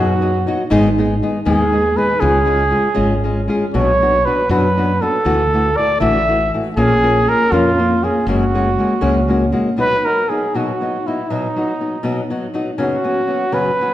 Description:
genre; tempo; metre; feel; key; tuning
mexican folk, mariachi; 80 BPM (dotted quarters); 6/8; straight; F# major, B major from 9.8 s; A4 = 440 Hz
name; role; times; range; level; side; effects
dark trumpet; melody; 0.0-13.9 s; D#4 to E5; -17 LUFS; right 1 dB; none
nylon-string guitar; accompaniment; 0.0-13.9 s; F#2 to A#4; -18 LUFS; left 2 dB; none
mellow fretless electric bass; bass; 0.0-9.5 s; F#1 to F#2; -20 LUFS; equal; none
room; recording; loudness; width
wet recital hall reverb, RT60 1.3 s; recorded in a church or concert hall; -14 LUFS; side -13 dB against mid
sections
0.0-9.8 A section; 9.8-13.9 B section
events
none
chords
0.0 B; 0.7 G#m; 2.2 C#; 3.7 Bm; 5.3 Dadd9; 6.8 A#m; 8.3 F#add9; 9.8 B; 12.8 F#sus4

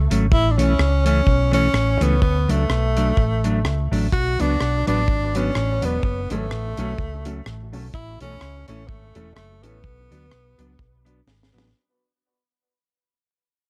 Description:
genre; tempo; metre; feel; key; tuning
ska; 126 BPM; 4/4; swing 57% on 8ths; B dorian; A4 = 440 Hz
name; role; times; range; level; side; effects
clear tenor saxophone; melody; 0.0-11.3 s; A3 to F#4; -26 LUFS; equal; dub echo
hollow-body short-scale fingered electric bass; bass; 0.0-11.7 s; E1 to D2; -24 LUFS; equal; none
mellow electric guitar; accompaniment; 0.1-11.7 s; E3 to D4; -27 LUFS; equal; none
deep reggae drum kit; drums; 0.1-11.7 s; hi-hat, kick drum, rim click, snare drum; -26 LUFS; equal; none
dark upright piano; stabs; 4.4-11.6 s; A3 to B4; -37 LUFS; equal; dub echo
room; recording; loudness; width
little or no reverb; vinyl crackle; -20 LUFS; mono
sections
0.0-11.7 A section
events
fade-out 0.0-11.7; drum fill 11.3-11.7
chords
0.3 A; 2.2 D; 4.1 Bm; 6.0 F#m; 7.9 A; 9.8 Bm

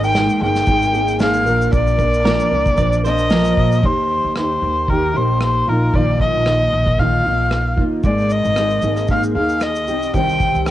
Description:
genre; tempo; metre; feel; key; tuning
acoustic pop; 114 BPM; 4/4; swing 55% on 16ths; Eb major; A4 = 441 Hz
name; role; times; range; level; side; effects
rich erhu; melody; 0.0-10.7 s; Bb4 to G5; -18 LUFS; left 1 dB; cassette tape
fingerpicked steel-string acoustic guitar; accompaniment; 0.0-10.7 s; Bb2 to Bb4; -20 LUFS; right 1 dB; double-tracked left and right, cassette tape
upright bass; bass; 0.0-10.7 s; G1 to Eb2; -21 LUFS; equal; none
unplugged drum kit; drums; 0.0-10.7 s; kick drum, rim click, shaker, snare drum; -21 LUFS; equal; cassette tape
direct-recorded clean electric guitar; second line; 2.3-3.8 s; Bb4 to D5; -27 LUFS; right 8 dB; cassette tape
room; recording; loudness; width
little or no reverb; home recording on cassette, nothing above 10.4 kHz; -14 LUFS; side -13 dB against mid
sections
0.0-3.8 A section; 3.8-10.7 B section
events
none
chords
0.0 Absus2; 1.5 Bb; 3.8 Eb; 5.7 Bbsus4; 8.0 Absus2; 9.9 Cm

